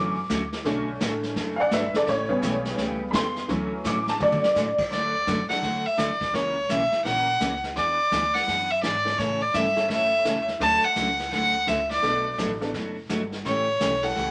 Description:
country, western swing; 169 BPM; 4/4; swing 64% on 8ths; D major; A4 = 443 Hz
honky-tonk upright piano; accompaniment; 0.0-14.3 s; C#3 to D6; -29 LUFS; equal
picked steel-string acoustic guitar; accompaniment; 0.0-14.3 s; B2 to A4; -33 LUFS; equal
upright bass; bass; 0.0-14.3 s; F#1 to A2; -40 LUFS; equal
vintage brush drum kit; drums; 0.3-14.3 s; brushed snare drum, crash cymbal, hi-hat, kick drum, snare drum, toms; -34 LUFS; equal
rich fiddle; melody; 4.9-14.3 s; C#5 to A5; -25 LUFS; equal
moderate studio reverb, RT60 0.5 s; -25 LUFS; mono
0.0-4.9 A section; 4.9-14.3 B section
honky-tonk piano solo 0.0-4.9; drum fill 4.2-4.6
0.0 Dmaj7; 0.7 Bm7; 2.1 A7; 3.5 Dmaj7; 4.9 D; 6.3 F#7; 7.8 E7; 9.2 A; 10.6 Dmaj7; 12.0 Bm7; 13.4 A7
0.30 | 0.65 1.01 1.36 1.72 | 2.07 2.43 2.78 3.14 | 3.49 3.85 4.21 4.56 | 4.92 5.27 5.63 5.98 | 6.34 6.69 7.05 7.41 | 7.76 8.12 8.47 8.83 | 9.18 9.54 9.89 10.25 | 10.61 10.96 11.32 11.67 | 12.03 12.38 12.74 13.10 | 13.45 13.80 14.16

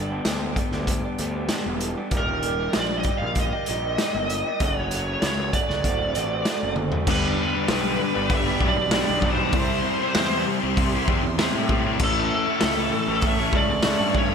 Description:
quiet-loud alternative rock; 97 BPM; 4/4; straight; A4 = 442 Hz
electric guitar through a small old amp; arpeggios; 0.0-7.1 s; D2 to G4; -30 LUFS; right 1 dB; spring reverb, slapback echo, tape echo
fuzz picked electric bass; bass; 0.0-14.3 s; D1 to A2; -29 LUFS; equal; overdrive
raw garage drum kit; drums; 0.2-14.3 s; crash cymbal, hi-hat, kick drum, snare drum, toms; -26 LUFS; equal
high-gain lead guitar; melody; 2.2-14.3 s; A4 to F5; -26 LUFS; right 1 dB; distortion
rich studio string section; sustained chords; 7.1-14.3 s; G4 to C#6; -34 LUFS; equal
overdriven electric guitar; riff; 7.1-14.3 s; G2 to C5; -26 LUFS; left 12 dB
thick fuzz guitar; riff; 7.1-14.3 s; G2 to C5; -28 LUFS; right 11 dB; distortion, slapback echo
moderate lush hall reverb, RT60 2.5 s; big arena sound; -21 LUFS; side -6 dB against mid
0.0-7.1 A section; 7.1-14.3 B section
drum fill 6.8-7.1
0.0 G; 2.1 Eb; 4.6 F#m; 5.8 D7; 7.1 G; 9.5 C; 12.0 A
0.26 0.89 1.51 | 2.13 2.75 3.37 3.99 | 4.61 5.23 5.85 6.46 | 7.08 7.70 8.31 8.93 | 9.55 10.16 10.78 11.39 | 12.01 12.62 13.24 13.85

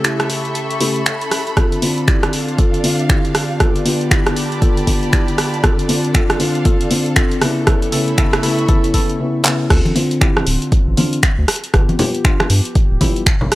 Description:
deep house; 118 BPM; 4/4; swing 61% on 16ths; D dorian; A4 = 440 Hz
tine electric piano; melody; 0.0-13.2 s; G3 to A4; -25 LUFS; right 1 dB; medium stereo tremolo, vintage 12-bit sampler grit, analog delay
airy breathy pad; sustained chords; 0.0-9.2 s; A3 to E5; -29 LUFS; equal; chorus, phaser, vintage 12-bit sampler grit, sidechain pumping
felt-muted upright piano; stabs; 0.0-13.2 s; C#3 to G4; -20 LUFS; left 1 dB; sidechain pumping
deep house drum kit; drums; 0.0-13.6 s; crash cymbal, finger snaps, handclaps, hi-hat, rim click; -19 LUFS; right 1 dB
clear studio string section; texture; 0.0-9.2 s; D4 to C#6; -26 LUFS; equal; sidechain pumping
electronic kick drum; drums; 1.6-13.4 s; -15 LUFS; equal
round analog bass; bass; 9.7-13.5 s; D1 to G2; -16 LUFS; equal
congas; percussion; 9.9-13.5 s; -20 LUFS; left 1 dB
little or no reverb; dry, gritty hardware recording; -13 LUFS; side -17 dB against mid
0.0-9.7 A section; 9.7-13.6 B section
build-up 0.0-9.7; drum fill 9.4; drop 9.7-13.6
0.0 A7; 1.6 Dm7; 3.3 G7; 5.4 Dm7; 7.4 A7; 9.7 Dm7; 11.5 G7
0.04 0.55 1.06 | 1.57 2.08 2.58 3.09 | 3.60 4.11 4.62 5.13 | 5.64 6.14 6.65 7.16 | 7.67 8.18 8.69 9.20 | 9.70 10.21 10.72 11.23 | 11.74 12.25 12.76 13.26

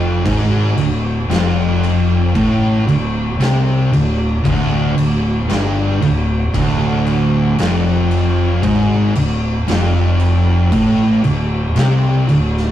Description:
stoner and doom metal; 57 BPM; 4/4; straight; D minor; A4 = 440 Hz
fuzz guitar; riff; 0.0-12.7 s; D2 to C3; -22 LUFS; left 1 dB; distortion
thick fuzz guitar; riff; 0.0-12.7 s; D2 to C3; -16 LUFS; equal; distortion
thick fuzz guitar; riff; 0.0-12.7 s; D2 to C3; -22 LUFS; right 1 dB; distortion
fuzz fingered electric bass; bass; 0.0-12.7 s; D1 to C2; -21 LUFS; equal; overdrive
oversized low-tuned drum kit; drums; 0.3-12.7 s; crash cymbal, kick drum, snare drum; -23 LUFS; equal
wet booth ambience, RT60 0.2 s; rough rehearsal-room recording, warm saturation; -13 LUFS; side -12 dB against mid
0.0-12.7 A section
0.0 Dm
0.26 1.30 | 2.35 3.40 4.45 5.49 | 6.54 7.59 8.63 9.68 | 10.72 11.76

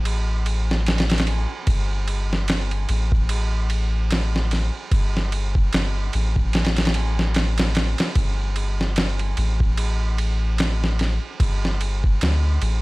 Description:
trip hop; 74 BPM; 4/4; swing 57% on 16ths; A4 = 440 Hz
soft dub sub bass; bass; 0.0-12.8 s; G1 to D2; -21 LUFS; equal
dusty soul sampler-style drum kit; drums; 0.1-12.8 s; kick drum, ride cymbal, snare drum; -23 LUFS; equal
little or no reverb; vinyl crackle; -19 LUFS; side -22 dB against mid
0.0-12.8 A section
0.05 0.86 | 1.67 2.48 3.29 4.11 | 4.92 5.73 6.54 7.35 | 8.16 8.97 9.78 10.59 | 11.40 12.21

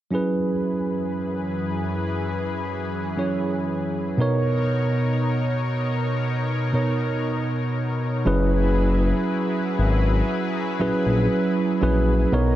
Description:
contemporary R&B; 59 BPM; 4/4; straight; A4 = 440 Hz
tine electric piano; accompaniment; 0.1-12.6 s; B2 to C#5; -22 LUFS; right 2 dB
lush unison pad; sustained chords; 0.1-12.6 s; F#2 to D#5; -28 LUFS; left 3 dB; chorus
smooth synth bass; bass; 8.3-12.6 s; F#1 to B1; -21 LUFS; left 1 dB
light reverb; -21 LUFS; side -13 dB against mid
0.1-8.3 A section; 8.3-12.6 B section
0.1 F#9sus4; 4.2 Bmaj9; 8.3 F#9sus4
| 0.13 1.14 2.16 3.18 | 4.19 5.21 6.23 7.25 | 8.26 9.28 10.30 11.31 | 12.33

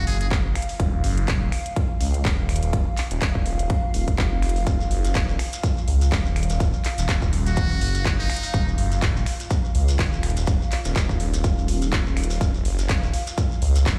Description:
bass house; 124 BPM; 4/4; swing 56% on 16ths; Eb minor; A4 = 440 Hz
trumpet with metal mute; melody; 0.0-0.3, 7.5-8.7 s; Eb4 to Ab4; -33 LUFS; equal; tape echo
phased detuned saw bass; bass; 0.0-14.0 s; Eb1 to Db2; -25 LUFS; equal; phaser, overdrive, sidechain pumping
granular cloud pad; texture; 0.0-14.0 s; F5; -38 LUFS; equal; built-in reverb, sidechain pumping
garage drum kit; drums; 0.1-14.0 s; finger snaps, handclaps, hi-hat; -32 LUFS; equal
electronic kick drum; drums; 0.3-14.0 s; -25 LUFS; equal
shekere; percussion; 4.7-14.0 s; -39 LUFS; equal
digital ambience; played on a big sound system in a bare room, stone room reverb; -23 LUFS; mono
0.0-14.0 A section
0.0 Ebmadd9
0.31 | 0.80 1.28 1.76 2.25 | 2.73 3.21 3.70 4.18 | 4.67 5.15 5.63 6.12 | 6.60 7.09 7.57 8.05 | 8.54 9.02 9.51 9.99 | 10.47 10.96 11.44 11.93 | 12.41 12.89 13.38 13.86

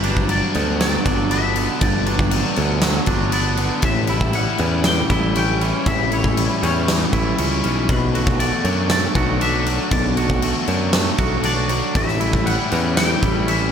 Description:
rock, shoegaze and dream pop; 118 BPM; 4/4; straight; A4 = 440 Hz
twangy electric guitar; melody; 0.0-13.7 s; B4 to G5; -26 LUFS; left 2 dB; lush chorus, diffuse ambient delay
crunchy overdriven guitar; riff; 0.0-13.7 s; G2 to G4; -23 LUFS; left 6 dB; analog chorus
twangy electric guitar; riff; 0.0-13.7 s; G2 to F#4; -25 LUFS; right 8 dB; reverse reverb
modern bright picked electric bass; bass; 0.0-13.7 s; G1 to F#2; -22 LUFS; equal
huge arena drum kit; drums; 0.0-13.6 s; crash cymbal, kick drum, snare drum; -21 LUFS; equal
moderate plate reverb, RT60 2.4 s; dreamy mix soaked in reverb; -16 LUFS; side -8 dB against mid
0.0-13.7 A section
0.0 Gmaj7; 3.8 A7; 7.9 Bm7; 12.0 A7
0.30 0.81 1.31 | 1.81 2.32 2.83 3.33 | 3.84 4.34 4.85 5.35 | 5.86 6.37 6.87 7.38 | 7.89 8.40 8.90 9.41 | 9.92 10.43 10.94 11.45 | 11.96 12.46 12.97 13.48

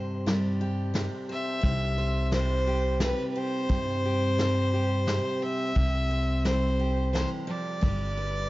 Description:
honky-tonk and classic country; 87 BPM; 3/4; straight; C major; A4 = 440 Hz
picked steel-string acoustic guitar; accompaniment; 0.0-8.5 s; C3 to C5; -31 LUFS; equal
upright bass; bass; 0.0-8.5 s; G1 to G2; -28 LUFS; equal
vintage brush drum kit; drums; 0.3-8.0 s; kick drum, ride cymbal, snare drum; -32 LUFS; equal
clear fiddle; melody; 1.3-8.5 s; B4 to E5; -31 LUFS; equal; analog delay
light reverb; dark, warm production, nothing above 7.6 kHz; -25 LUFS; side -18 dB against mid
0.0-8.5 A section
0.0 C; 7.8 G
0.26 0.95 | 1.64 2.33 3.02 | 3.70 4.39 5.08 | 5.77 6.45 7.14 | 7.83

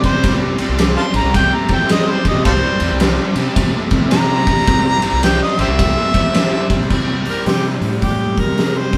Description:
blues rock power trio and southern rock; 108 BPM; 4/4; swing 63% on 8ths; C mixolydian; A4 = 440 Hz
warm harmonica; melody; 0.0-9.0 s; F4 to C6; -21 LUFS; equal; overdrive
distorted electric guitar; riff; 0.0-9.0 s; C3 to C4; -24 LUFS; equal; distortion
growling fingered electric bass; bass; 0.0-9.0 s; A1 to C3; -23 LUFS; equal; overdrive
oversized low-tuned drum kit; drums; 0.0-9.0 s; crash cymbal, hi-hat, kick drum, ride cymbal, snare drum; -19 LUFS; equal
overdriven tonewheel organ; sustained chords; 0.2-7.9 s; G3 to Bb4; -31 LUFS; equal
light reverb; band playing live in one room; -16 LUFS; mono
0.0-6.9 A section; 6.9-9.0 B section
harmonica solo 0.0-6.9
0.0 C
| 0.24 0.80 1.35 1.91 | 2.46 3.02 3.57 4.13 | 4.68 5.24 5.79 6.35 | 6.91 7.46 8.02 8.58

